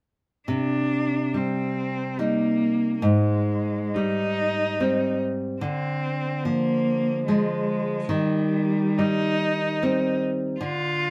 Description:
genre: romantic duo for cello and classical guitar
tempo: 71 BPM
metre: 3/4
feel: uneven beats, rubato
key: C minor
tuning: A4 = 442 Hz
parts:
  - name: clear cello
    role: melody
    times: 0.5-11.1 s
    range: G3 to F4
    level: -28 LUFS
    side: equal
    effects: none
  - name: nylon-string guitar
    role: accompaniment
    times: 0.5-11.1 s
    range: Ab2 to Eb4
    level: -26 LUFS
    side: equal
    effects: none
room: moderate large studio reverb, RT60 0.9 s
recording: band playing live in one room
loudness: -24 LUFS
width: mono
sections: 0.5-11.1 A section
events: none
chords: 0.5 Cm; 3.0 Abmaj7; 5.6 Dm7b5; 8.1 Cm/Eb

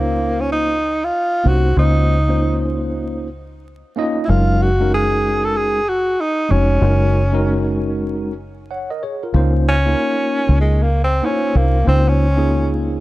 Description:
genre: hip hop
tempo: 95 BPM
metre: 4/4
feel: swing 63% on 16ths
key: Db major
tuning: A4 = 440 Hz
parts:
  - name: mellow tenor saxophone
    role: melody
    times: 0.0-12.7 s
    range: Ab3 to A4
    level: -19 LUFS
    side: equal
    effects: none
  - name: tine electric piano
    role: accompaniment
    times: 0.0-13.0 s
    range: Gb3 to Gb5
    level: -21 LUFS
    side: equal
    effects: medium stereo tremolo
  - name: deep dub fingered electric bass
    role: bass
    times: 0.0-13.0 s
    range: F1 to Db2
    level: -17 LUFS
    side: equal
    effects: none
room: little or no reverb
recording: vinyl crackle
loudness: -15 LUFS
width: side -17 dB against mid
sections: 0.0-9.3 A section; 9.3-13.0 B section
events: tenor saxophone solo 9.3-13.0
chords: 0.0 Dbmaj13; 4.3 Gb69; 9.3 Dbmaj13

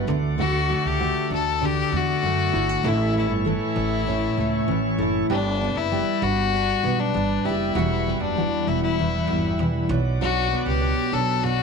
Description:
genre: acoustic pop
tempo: 98 BPM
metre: 4/4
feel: straight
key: unclear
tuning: A4 = 440 Hz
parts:
  - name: warm violin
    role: melody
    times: 0.0-11.6 s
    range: D4 to A4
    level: -25 LUFS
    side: left 11 dB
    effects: none
  - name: fingerpicked steel-string acoustic guitar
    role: accompaniment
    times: 0.0-11.6 s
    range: E2 to G4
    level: -24 LUFS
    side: right 1 dB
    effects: double-tracked left and right
  - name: bright tonewheel organ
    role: sustained chords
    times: 0.0-11.6 s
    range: G3 to D6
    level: -34 LUFS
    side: right 1 dB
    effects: slow rotary speaker
  - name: flamenco guitar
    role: arpeggios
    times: 0.0-11.6 s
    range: E3 to A4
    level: -32 LUFS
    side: right 12 dB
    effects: none
  - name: upright bass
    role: bass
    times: 0.0-11.6 s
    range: E1 to F#2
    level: -27 LUFS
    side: right 2 dB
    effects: none
room: light reverb, small room ambience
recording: 1960s-style stereo with parts hard left and right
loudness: -20 LUFS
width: side -5 dB against mid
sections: 0.0-11.6 A section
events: none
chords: 0.1 D; 2.8 A; 5.3 G; 7.8 Emadd9; 9.9 Bm

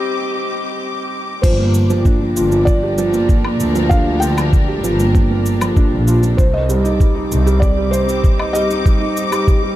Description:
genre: piano and strings electronica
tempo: 97 BPM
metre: 4/4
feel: straight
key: G minor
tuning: A4 = 439 Hz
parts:
  - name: dark studio string section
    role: sustained chords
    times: 0.0-9.8 s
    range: G3 to D6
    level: -24 LUFS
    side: left 2 dB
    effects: sidechain pumping
  - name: felt-muted upright piano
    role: riff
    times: 0.0-9.8 s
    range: F3 to Eb5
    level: -18 LUFS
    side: right 1 dB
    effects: ping-pong delay
  - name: felt-muted upright piano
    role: melody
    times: 1.4-9.7 s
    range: C5 to G5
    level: -24 LUFS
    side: equal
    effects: ping-pong delay
  - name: clear symphonic double bass section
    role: bass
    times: 1.4-7.9 s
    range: G1 to D2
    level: -18 LUFS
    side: equal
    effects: sidechain pumping
  - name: electronic crash cymbal, shaker and woodblock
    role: drums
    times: 1.4-9.6 s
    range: none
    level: -28 LUFS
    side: left 2 dB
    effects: none
  - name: electronic kick drum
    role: drums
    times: 1.4-9.6 s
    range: none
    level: -13 LUFS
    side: equal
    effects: none
room: light reverb, studio reverb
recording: dark, warm production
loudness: -13 LUFS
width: side -14 dB against mid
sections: 0.0-1.4 A section; 1.4-9.8 B section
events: break 0.0-1.4; build-up 0.0-1.4; drop 1.4-9.8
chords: 0.0 Cm; 1.4 Gm7; 6.4 Cm

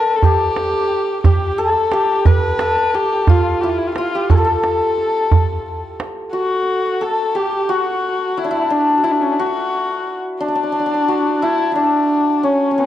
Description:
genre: Persian modal ensemble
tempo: 59 BPM (dotted quarters)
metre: 6/8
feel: straight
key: A dastgah shur, D dastgah mahur from 6.3 s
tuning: A4 = 441 Hz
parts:
  - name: santur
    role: melody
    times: 0.0-12.9 s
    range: B3 to D5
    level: -18 LUFS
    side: left 2 dB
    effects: none
  - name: warm kamancheh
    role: second line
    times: 0.0-12.9 s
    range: B3 to B4-46c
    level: -20 LUFS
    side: left 1 dB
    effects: none
  - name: tombak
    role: percussion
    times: 0.2-6.2 s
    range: none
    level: -15 LUFS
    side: right 3 dB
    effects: none
room: moderate recital hall reverb, RT60 1.4 s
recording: dark, warm production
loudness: -15 LUFS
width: side -12 dB against mid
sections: 0.0-6.3 A section; 6.3-12.9 B section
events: none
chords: none

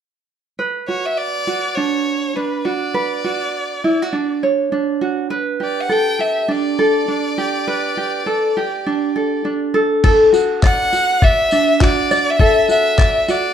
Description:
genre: acoustic pop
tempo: 102 BPM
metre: 4/4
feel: swing 60% on 16ths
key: unclear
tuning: A4 = 437 Hz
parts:
  - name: tenor ukulele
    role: accompaniment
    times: 0.6-13.5 s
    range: D4 to D5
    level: -17 LUFS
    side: right 1 dB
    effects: none
  - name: rich violin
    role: melody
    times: 0.9-13.5 s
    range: B4 to G5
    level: -19 LUFS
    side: left 1 dB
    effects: none
  - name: dusty soul sampler-style drum kit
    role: drums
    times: 10.0-13.4 s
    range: crash cymbal, handclaps, kick drum, tambourine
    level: -16 LUFS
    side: left 2 dB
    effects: none
room: wet studio reverb, RT60 0.8 s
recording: heard from further back in the room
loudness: -15 LUFS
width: side -8 dB against mid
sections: 0.6-10.0 A section; 10.0-13.5 B section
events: none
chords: 0.6 Bmadd9/D; 5.3 Gadd9/D; 9.7 N.C.; 10.0 D

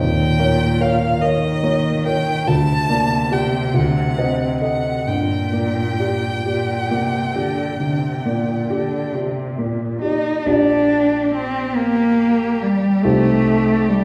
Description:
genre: classical, slow romantic movement for piano trio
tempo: 43-49 BPM (dotted quarters)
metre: 12/8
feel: rubato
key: G minor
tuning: A4 = 439 Hz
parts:
  - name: rich violin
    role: melody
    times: 0.0-14.0 s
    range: G4 to A5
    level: -28 LUFS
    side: equal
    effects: none
  - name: rich cello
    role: second line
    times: 0.0-14.0 s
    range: Bb2 to Eb4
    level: -22 LUFS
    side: equal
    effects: none
  - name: warm grand piano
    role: accompaniment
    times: 0.0-14.0 s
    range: Bb1 to Eb5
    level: -22 LUFS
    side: equal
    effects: none
room: wet recital hall reverb, RT60 1.3 s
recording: heard from further back in the room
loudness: -19 LUFS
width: mono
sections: 0.0-10.5 A section; 10.5-14.0 B section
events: none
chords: 0.0 Eb7; 2.5 Gm/D; 3.7 D7b9; 5.1 Gm; 10.5 Gm/Bb; 13.0 Cm

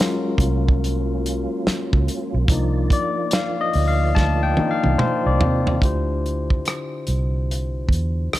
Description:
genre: R&B, neo-soul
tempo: 72 BPM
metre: 4/4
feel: swing 63% on 16ths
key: unclear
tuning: A4 = 435 Hz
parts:
  - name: barky tine electric piano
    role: accompaniment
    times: 0.0-8.4 s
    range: D3 to A5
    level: -24 LUFS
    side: left 5 dB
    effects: overdrive
  - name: percussive tonewheel organ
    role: sustained chords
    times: 0.0-5.8 s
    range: F3 to D5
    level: -28 LUFS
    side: right 6 dB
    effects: chorus vibrato, fast rotary speaker
  - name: warm soul drum kit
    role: drums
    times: 0.0-8.4 s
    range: hi-hat, kick drum, rim click, snare drum, toms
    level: -21 LUFS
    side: right 1 dB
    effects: none
  - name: vintage muted fingered electric bass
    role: bass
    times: 0.4-8.4 s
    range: B1 to C3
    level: -21 LUFS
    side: right 1 dB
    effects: none
room: small room ambience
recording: none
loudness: -18 LUFS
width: side -15 dB against mid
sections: 0.0-5.8 A section; 5.8-8.4 B section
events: tine electric piano solo 0.0-5.8; drum fill 4.2-5.8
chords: 0.0 Ebm11 (rootless); 2.5 Cm11; 5.8 Dm11

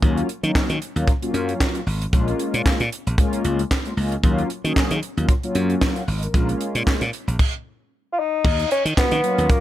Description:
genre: early-eighties boogie funk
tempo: 114 BPM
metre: 4/4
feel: swing 56% on 16ths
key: Eb minor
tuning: A4 = 440 Hz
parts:
  - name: mellow synth brass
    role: accompaniment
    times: 0.0-9.6 s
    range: Gb3 to Gb5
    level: -25 LUFS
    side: left 2 dB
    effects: chorus
  - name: glassy slap bass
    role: bass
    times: 0.0-9.5 s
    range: Ab1 to Eb3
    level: -22 LUFS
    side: equal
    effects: none
  - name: tight funk drum kit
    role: drums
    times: 0.0-9.6 s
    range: crash cymbal, handclaps, hi-hat, kick drum, snare drum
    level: -21 LUFS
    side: equal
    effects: gated reverb
  - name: warm bassoon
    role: melody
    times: 8.1-9.6 s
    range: Bb3 to F4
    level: -20 LUFS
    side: left 2 dB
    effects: none
room: studio ambience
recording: none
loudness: -19 LUFS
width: side -13 dB against mid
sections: 0.0-8.4 A section; 8.4-9.6 B section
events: none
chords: 0.0 Ebm9; 2.1 Bbm7; 4.2 Ebm9; 6.3 Bbm7; 7.4 N.C.; 8.4 Ebm9

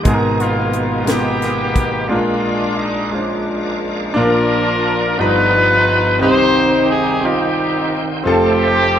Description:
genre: slow gospel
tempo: 58 BPM (dotted quarters)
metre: 6/8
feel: straight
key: unclear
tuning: A4 = 444 Hz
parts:
  - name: warm horn section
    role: melody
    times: 0.0-9.0 s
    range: F3 to C5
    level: -17 LUFS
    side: left 1 dB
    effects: slapback echo
  - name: clear concert grand piano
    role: accompaniment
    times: 0.0-9.0 s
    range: F1 to A#5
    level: -17 LUFS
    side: equal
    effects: none
  - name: bright tonewheel organ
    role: sustained chords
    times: 0.0-9.0 s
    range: Cb3 to G5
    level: -23 LUFS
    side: right 2 dB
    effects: slow rotary speaker, chorus vibrato
  - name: tight funk drum kit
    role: drums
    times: 0.0-1.9 s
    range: hi-hat, kick drum, snare drum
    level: -19 LUFS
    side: equal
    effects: none
room: moderate lush hall reverb, RT60 2.0 s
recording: rough home demo mix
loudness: -13 LUFS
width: side -9 dB against mid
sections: 0.0-4.2 A section; 4.2-9.0 B section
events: break 2.1-4.2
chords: 0.1 Abmadd9; 2.1 Bb7; 4.2 Bb; 5.2 G7alt; 6.2 Cm; 8.3 F

